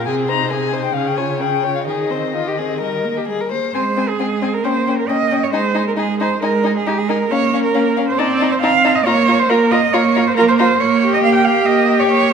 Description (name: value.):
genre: quick classical-period movement for string quartet.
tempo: 136 BPM.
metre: 4/4.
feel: rubato.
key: Ab major.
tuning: A4 = 440 Hz.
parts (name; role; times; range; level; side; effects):
dark violin; melody; 0.0-12.3 s; Eb5 to Bb5; -24 LUFS; left 10 dB; none.
rich violin; second line; 0.0-12.3 s; C4 to Db5; -20 LUFS; left 4 dB; none.
warm viola; accompaniment; 0.0-12.3 s; G3 to F4; -19 LUFS; right 3 dB; none.
rich cello; bass; 0.0-12.3 s; C3 to G5; -18 LUFS; right 5 dB; none.
room: moderate scoring stage reverb, RT60 1.7 s.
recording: none.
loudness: -14 LUFS.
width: side -6 dB against mid.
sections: 0.0-3.7 A section; 3.7-12.3 B section.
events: none.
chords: 0.1 Ab/C; 0.9 Db; 1.9 Ab/Eb; 2.8 Eb; 3.7 Ab; 4.6 Gdim/Bb; 5.5 Ab; 7.3 Bbm; 8.2 Adim/C; 9.1 Bbm; 10.8 Gdim/Bb.